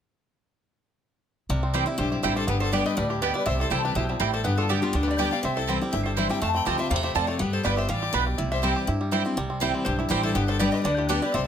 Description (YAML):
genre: bluegrass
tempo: 244 BPM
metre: 4/4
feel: straight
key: C major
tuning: A4 = 440 Hz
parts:
  - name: bluegrass banjo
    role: melody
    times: 1.5-11.5 s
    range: G3 to G4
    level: -31 LUFS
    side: right 4 dB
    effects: none
  - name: picked steel-string acoustic guitar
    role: accompaniment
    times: 1.5-11.5 s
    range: F2 to G4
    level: -28 LUFS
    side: left 3 dB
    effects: none
  - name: upright bass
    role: bass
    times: 1.5-11.5 s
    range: G1 to G2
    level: -29 LUFS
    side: equal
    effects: none
  - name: mandolin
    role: stabs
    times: 1.7-11.2 s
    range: B3 to A5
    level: -28 LUFS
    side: right 8 dB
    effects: none
  - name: lap resonator guitar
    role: melody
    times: 2.0-11.5 s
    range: E4 to B5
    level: -30 LUFS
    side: left 1 dB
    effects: slapback echo
  - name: clear fiddle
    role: second line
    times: 2.0-11.4 s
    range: C4 to G5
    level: -33 LUFS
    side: left 8 dB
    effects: none
room: light reverb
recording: close, detailed microphones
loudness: -22 LUFS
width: side -8 dB against mid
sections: 1.5-9.4 A section; 9.4-11.5 A section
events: none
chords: 1.5 C; 2.5 G; 3.5 C; 4.5 G; 5.4 C; 6.4 F; 7.4 G7; 8.4 C; 10.4 G